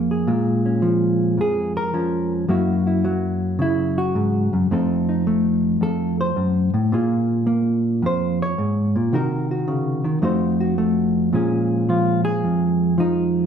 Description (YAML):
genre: solo jazz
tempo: 109 BPM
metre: 4/4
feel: swing 68% on 8ths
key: Bb minor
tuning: A4 = 439 Hz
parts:
  - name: hollow-body jazz guitar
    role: solo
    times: 0.0-13.5 s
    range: F2 to Db5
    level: -18 LUFS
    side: equal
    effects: none
room: moderate large studio reverb, RT60 0.9 s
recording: band playing live in one room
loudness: -18 LUFS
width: side -8 dB against mid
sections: 0.0-11.3 A section; 11.3-13.5 A section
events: hollow-body jazz guitar solo 0.0-11.3, 11.3-13.5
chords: 0.0 Bbm7; 2.5 Gb7; 4.7 F7; 6.9 Bbm7; 9.1 Cm7b5; 10.2 F7b9; 11.3 Bbm7